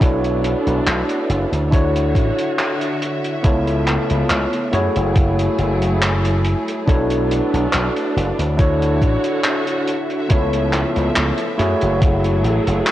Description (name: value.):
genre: vaporwave.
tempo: 70 BPM.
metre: 4/4.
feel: swing 53% on 16ths.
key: B dorian.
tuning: A4 = 441 Hz.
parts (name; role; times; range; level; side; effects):
overdriven tine electric piano; accompaniment; 0.0-12.9 s; A3 to C#5; -20 LUFS; equal; lush chorus, analog delay.
warm studio string section; sustained chords; 0.0-12.9 s; C#3 to E5; -25 LUFS; equal; none.
slap bass with an envelope filter; bass; 0.0-12.8 s; F#1 to F#2; -20 LUFS; equal; tube saturation.
cloth-damped thuddy drum kit; drums; 0.0-12.9 s; handclaps, hi-hat; -24 LUFS; equal; gated reverb.
electronic kick drum; drums; 0.0-12.2 s; none; -16 LUFS; equal; none.
room: light reverb, studio reverb.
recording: cassette tape.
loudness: -16 LUFS.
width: side -13 dB against mid.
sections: 0.0-12.9 A section.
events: none.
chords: 0.0 Bm11; 1.7 Dmaj9; 3.4 C#7alt; 4.7 F#m9; 6.9 Bm11; 8.6 Dmaj9; 10.3 C#7alt; 11.6 F#m9.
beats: | 0.02 0.87 1.73 2.59 | 3.44 4.30 5.16 6.02 | 6.87 7.73 8.59 9.45 | 10.30 11.16 12.02 12.87.